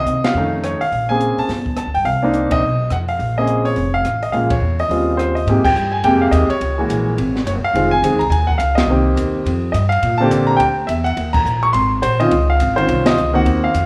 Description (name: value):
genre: jazz piano trio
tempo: 211 BPM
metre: 4/4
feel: swing 61% on 8ths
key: Bb minor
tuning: A4 = 440 Hz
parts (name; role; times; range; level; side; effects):
- clear concert grand piano; melody; 0.0-13.9 s; C3 to Db6; -19 LUFS; equal; none
- upright bass; bass; 0.0-13.9 s; F1 to C3; -22 LUFS; equal; none
- compact cocktail drum kit; drums; 0.1-13.8 s; crash cymbal, hi-hat, kick drum, ride cymbal, rim click, snare drum; -28 LUFS; equal; none
room: moderate plate reverb, RT60 1.5 s, studio reverb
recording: rough home demo mix, small room ambience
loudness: -17 LUFS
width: mono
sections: 0.0-5.5 A section; 5.5-13.9 B section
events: band accent 0.2, 2.5, 4.5, 5.6, 8.7, 11.3, 13.0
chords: 0.3 F7b13; 0.9 Bbm9; 1.5 G5; 2.1 Cm9; 2.6 B; 3.2 Bbm9; 4.3 Bbm7; 4.9 Eb13; 5.5 Abmaj9; 6.6 Gb9; 7.8 Fm7; 8.9 Cm7; 9.5 Fsus2; 10.0 Bb69; 11.2 Eb5; 11.7 Abadd9; 12.3 Dbmaj9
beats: 0.07 0.35 0.64 | 0.92 1.20 1.49 1.77 | 2.06 2.34 2.63 2.91 | 3.20 3.48 3.77 4.05 | 4.33 4.62 4.91 5.19 | 5.47 5.76 6.04 6.33 | 6.61 6.90 7.18 7.47 | 7.75 8.04 8.32 8.61 | 8.89 9.18 9.46 9.75 | 10.03 10.32 10.60 10.89 | 11.18 11.46 11.75 12.03 | 12.32 12.60 12.89 13.17 | 13.46 13.74